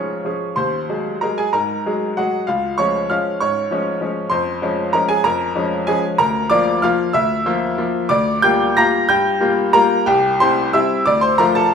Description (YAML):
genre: classical, piano waltz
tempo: 166-203 BPM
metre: 3/4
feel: rubato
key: Db major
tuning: A4 = 440 Hz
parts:
  - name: bright upright piano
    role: solo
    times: 0.0-11.7 s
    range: C2 to Bb6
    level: -15 LUFS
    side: equal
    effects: none
room: moderate recital hall reverb, RT60 1.7 s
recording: minimal, uncompressed stereo recording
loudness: -15 LUFS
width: side -6 dB against mid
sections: 0.0-11.7 A section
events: none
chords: 0.0 Db; 0.6 Ab7/Eb; 2.5 Db; 4.3 Db/F; 6.2 Bb/D; 8.1 Gm7/D; 10.1 C; 11.1 Dm